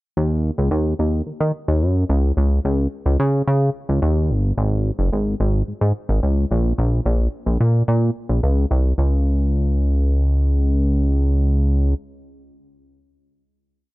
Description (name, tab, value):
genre	early-eighties boogie funk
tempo	109 BPM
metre	4/4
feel	straight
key	unclear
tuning	A4 = 439 Hz
part	chorused synth bass	solo	0.2-11.9 s	Gb1 to Eb3	-17 LUFS	equal	none
room	little or no reverb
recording	dry, close 1970s-style studio recording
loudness	-17 LUFS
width	side -19 dB against mid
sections	0.2-9.0 breakdown; 9.0-11.2 final note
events	none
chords	none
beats	| 0.17 0.72 1.27 1.82 | 2.37 2.92 3.48 4.03 | 4.58 5.13 5.68 6.23 | 6.78 7.33 7.88 8.43 | 8.98 9.53 10.08 10.63